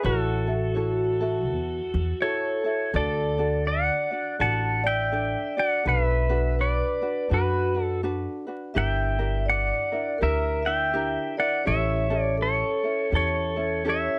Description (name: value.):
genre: Hawaiian.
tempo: 83 BPM.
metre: 4/4.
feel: swing 61% on 8ths.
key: D major.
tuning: A4 = 440 Hz.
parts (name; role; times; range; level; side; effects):
pedal steel guitar; melody; 0.0-14.2 s; F#4 to A5; -29 LUFS; equal; none.
vibraphone with medium mallets; second line; 0.0-14.2 s; F#4 to F#5; -32 LUFS; equal; none.
ukulele; accompaniment; 0.0-14.2 s; C#4 to D5; -35 LUFS; equal; none.
upright bass; bass; 0.0-14.1 s; G1 to F#2; -30 LUFS; equal; none.
room: light reverb.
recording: vinyl crackle.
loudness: -25 LUFS.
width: mono.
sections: 0.0-2.9 A section; 2.9-14.2 B section.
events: none.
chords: 0.0 A6; 2.9 D; 5.8 Bm7; 8.8 Gm6; 11.7 A7.